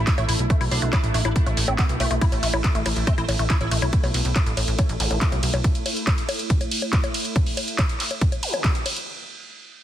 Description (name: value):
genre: psychedelic trance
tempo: 140 BPM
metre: 4/4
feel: straight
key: unclear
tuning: A4 = 445 Hz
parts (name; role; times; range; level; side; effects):
- bubbling stepped-filter texture; sustained chords; 0.0-7.4 s; A3 to E4; -32 LUFS; right 1 dB; chorus, built-in reverb, sidechain pumping
- plucky analog bass; bass; 0.0-5.6 s; A1 to B1; -24 LUFS; equal; none
- metallic wobble bass; second line; 0.1-3.7 s; C4 to E4; -36 LUFS; right 3 dB; analog chorus, sidechain pumping, high-pass filter, dub echo
- electronic kick drum; drums; 0.1-8.7 s; none; -21 LUFS; equal; none
- techno drum kit; drums; 0.1-9.1 s; bongos, handclaps, hi-hat, ride cymbal; -26 LUFS; equal; none
- woody wave-folded pluck; riff; 0.2-3.9 s; A3 to E4; -29 LUFS; left 1 dB; chorus, auto-pan, sidechain pumping, tape echo
- zap; sound effects; 5.0-5.1, 8.4-8.5 s; none; -34 LUFS; equal; none
room: little or no reverb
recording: dense, heavily limited modern master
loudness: -20 LUFS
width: side -12 dB against mid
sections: 0.0-9.1 A section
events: drop 0.0-9.1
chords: 0.0 A5